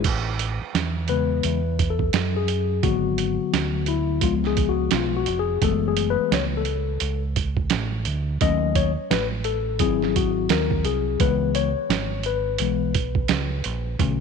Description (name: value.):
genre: hip hop, jazz-hop.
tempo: 86 BPM.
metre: 4/4.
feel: swing 61% on 16ths.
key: unclear.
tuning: A4 = 440 Hz.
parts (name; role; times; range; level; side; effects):
deep dub fingered electric bass; bass; 0.0-14.2 s; E#1 to F#2; -26 LUFS; right 2 dB; none.
lo-fi sampler-style drum kit; drums; 0.0-14.2 s; crash cymbal, hi-hat, kick drum, snare drum; -24 LUFS; right 7 dB; none.
mellow tine electric piano; accompaniment; 1.1-14.2 s; C#3 to D#5; -24 LUFS; left 11 dB; medium stereo tremolo.
room: light reverb.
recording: 1960s-style stereo with parts hard left and right.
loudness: -20 LUFS.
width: side -6 dB against mid.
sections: 0.0-14.2 A section.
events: tine electric piano solo 0.0-14.2.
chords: 0.0 Amaj9; 2.8 G#m7b5; 4.2 C#7; 5.6 F#m11; 8.4 D#m7b5; 9.8 G#7b13; 11.2 C#m7.